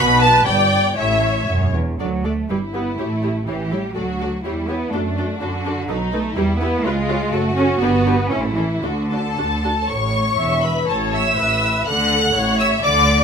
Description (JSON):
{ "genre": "quick classical-period movement for string orchestra", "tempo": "123 BPM", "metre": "2/4", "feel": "rubato", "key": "D major, A major from 9.9 s", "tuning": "A4 = 438 Hz", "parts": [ { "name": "rich studio violin section", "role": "melody", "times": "0.0-13.2 s", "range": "A4 to F#6", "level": "-21 LUFS", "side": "left 2 dB", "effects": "none" }, { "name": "rich studio violin section", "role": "second line", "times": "0.0-13.2 s", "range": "D4 to B5", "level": "-23 LUFS", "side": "left 1 dB", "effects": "none" }, { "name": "rich studio viola section", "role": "accompaniment", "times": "0.0-13.2 s", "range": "C#4 to E5", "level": "-24 LUFS", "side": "left 1 dB", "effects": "none" }, { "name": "rich studio cello section", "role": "bass", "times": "0.0-13.2 s", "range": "E2 to C#4", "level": "-22 LUFS", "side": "right 2 dB", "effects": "none" }, { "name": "warm studio double bass section", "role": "bass", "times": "0.0-13.2 s", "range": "E1 to F#2", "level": "-23 LUFS", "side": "right 1 dB", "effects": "none" } ], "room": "moderate large studio reverb, RT60 0.9 s", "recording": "minimal, uncompressed stereo recording", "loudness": "-16 LUFS", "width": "side -6 dB against mid", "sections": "0.0-2.0 A section; 2.0-9.9 A section; 9.9-13.2 B section", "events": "none", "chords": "0.5 G5; 1.0 A; 2.0 D; 2.5 Em/G; 3.0 A7; 4.0 D; 4.4 C#dim/E; 4.9 D/F#; 5.9 B7; 6.4 Em; 6.8 C#7; 7.3 F#m; 7.8 G; 8.3 A; 8.8 D; 9.9 A; 10.4 E5; 10.9 A; 11.9 D; 12.3 A" }